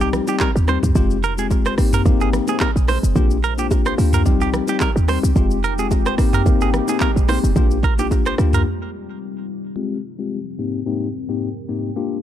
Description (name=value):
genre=afrobeats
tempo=109 BPM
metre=4/4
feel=swing 55% on 16ths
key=unclear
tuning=A4 = 440 Hz
part: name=bell-like tine electric piano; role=accompaniment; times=0.0-12.2 s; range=Ab2 to G4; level=-22 LUFS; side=left 7 dB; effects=low-pass filter
part: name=deep dark ambient pad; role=sustained chords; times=0.0-12.2 s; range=Ab2 to F5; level=-29 LUFS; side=right 1 dB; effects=chorus, built-in reverb, low-pass filter
part: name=direct-recorded clean electric guitar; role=riff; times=0.0-8.6 s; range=G4 to C5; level=-25 LUFS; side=right 9 dB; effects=tape echo
part: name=short 808-style bass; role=bass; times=0.0-8.7 s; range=F1 to Eb2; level=-19 LUFS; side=equal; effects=none
part: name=afro-pop drum kit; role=drums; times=0.0-8.7 s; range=handclaps, hi-hat, kick drum, rim click, shaker, toms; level=-20 LUFS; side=right 1 dB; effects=none
part: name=congas and bongos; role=percussion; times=0.1-8.3 s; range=none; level=-30 LUFS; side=right 6 dB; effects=none
room=little or no reverb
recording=dark, warm production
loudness=-16 LUFS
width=side -11 dB against mid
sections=0.0-9.8 A section; 9.8-12.2 B section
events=break 8.7-9.8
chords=0.0 Cm; 1.0 Fmadd9; 1.8 Abmaj7; 3.2 Gm7/Bb; 4.3 Cm; 5.4 Fmadd9; 6.2 Abmaj7; 7.6 Gm7/Bb; 8.7 Cm; 9.8 Fmadd9; 10.6 Abmaj7